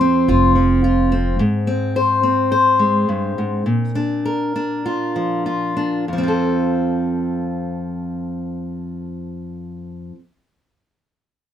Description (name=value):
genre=acoustic folk duo or small band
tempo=95-108 BPM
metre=4/4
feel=straight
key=F major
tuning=A4 = 440 Hz
part: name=fingerpicked steel-string acoustic guitar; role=accompaniment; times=0.0-10.2 s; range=F2 to C5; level=-17 LUFS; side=left 1 dB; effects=none
part: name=upright bass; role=bass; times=0.3-1.4 s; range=F1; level=-18 LUFS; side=equal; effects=none
room=light reverb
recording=close, detailed microphones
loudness=-16 LUFS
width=side -10 dB against mid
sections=0.0-6.1 A section; 6.1-8.6 B section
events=slowing down 1.4-6.1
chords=0.0 F5; 1.4 Ab; 3.7 Bb; 6.1 F